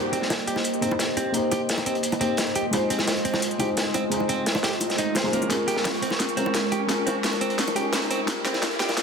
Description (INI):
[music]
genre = liquid drum and bass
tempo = 173 BPM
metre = 4/4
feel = straight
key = C minor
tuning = A4 = 441 Hz
[part]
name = felt-muted upright piano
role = accompaniment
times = 0.0-9.0 s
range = G3 to C5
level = -28 LUFS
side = left 2 dB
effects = tape echo
[part]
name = airy breathy pad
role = sustained chords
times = 0.0-9.0 s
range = G3 to Db6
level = -29 LUFS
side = equal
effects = chorus
[part]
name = riser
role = sound effects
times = 0.0-9.0 s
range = none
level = -36 LUFS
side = right 1 dB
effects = none
[part]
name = direct-recorded clean electric guitar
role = arpeggios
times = 0.1-8.9 s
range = Bb3 to C5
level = -30 LUFS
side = right 3 dB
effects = low-pass filter, dub echo
[part]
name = crunchy breakbeat drum kit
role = drums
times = 0.1-9.0 s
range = hi-hat, snare drum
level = -29 LUFS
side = equal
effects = high-pass filter on hats, small room ambience, high-pass filter on snare, high-pass filter on room
[part]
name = drum and bass drum kit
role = drums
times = 0.1-9.0 s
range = hi-hat, snare drum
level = -29 LUFS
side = equal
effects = small room ambience
[part]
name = bongos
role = percussion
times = 0.3-9.0 s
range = none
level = -32 LUFS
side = right 1 dB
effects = none
[sound]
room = moderate digital room reverb, RT60 1.1 s, small room ambience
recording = dense, heavily limited modern master, high-pass filter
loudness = -22 LUFS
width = side -5 dB against mid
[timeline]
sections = 0.0-9.0 A section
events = build-up 0.0-9.0; filter sweep on analog synth pad 0.0-9.0; drum fill 5.5-9.0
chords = 0.0 Cm7; 2.6 Fm7; 5.3 Bbm7; 8.1 Gm7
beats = 0.30 0.65 1.00 | 1.34 1.69 2.04 2.38 | 2.73 3.08 3.42 3.77 | 4.12 4.46 4.81 5.16 | 5.50 5.85 6.20 6.54 | 6.89 7.24 7.59 7.93 | 8.28 8.63 8.97